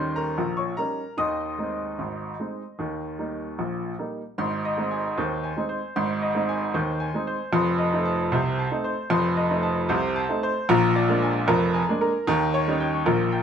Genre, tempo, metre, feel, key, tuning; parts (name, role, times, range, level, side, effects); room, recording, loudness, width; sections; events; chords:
ragtime piano; 76 BPM; 2/4; straight; Ab major; A4 = 439 Hz
clear upright piano; solo; 0.0-13.4 s; F1 to Eb6; -22 LUFS; equal
moderate club reverb, RT60 0.8 s; minimal, uncompressed stereo recording; -22 LUFS; side -8 dB against mid
0.0-4.4 A section; 4.4-13.4 A section
0.0 Eb7; 1.2 Ab/Eb; 2.8 Eb; 4.4 Ab; 7.5 F7; 10.7 Bb7; 12.3 Eb7